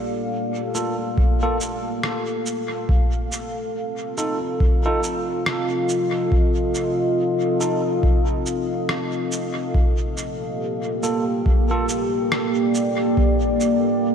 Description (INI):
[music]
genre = ambient dub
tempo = 70 BPM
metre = 4/4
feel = swing 59% on 16ths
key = G minor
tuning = A4 = 442 Hz
[part]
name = deep dark ambient pad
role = sustained chords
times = 0.0-14.1 s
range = Bb3 to F5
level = -22 LUFS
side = equal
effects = chorus, built-in reverb
[part]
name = barky tine electric piano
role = stabs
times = 0.7-11.9 s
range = Bb3 to A4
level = -28 LUFS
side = right 1 dB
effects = lush chorus, dub echo
[part]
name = electronic cabasa and rim click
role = drums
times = 0.8-13.8 s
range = none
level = -28 LUFS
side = right 1 dB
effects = overdrive, dub echo
[part]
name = electronic kick drum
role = drums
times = 1.2-13.4 s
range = none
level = -19 LUFS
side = equal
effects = none
[sound]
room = wet lush hall reverb, RT60 2.6 s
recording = dreamy mix soaked in reverb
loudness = -19 LUFS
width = side -7 dB against mid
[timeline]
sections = 0.0-14.1 A section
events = none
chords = 0.0 Gm9; 2.9 F7; 9.7 Gm9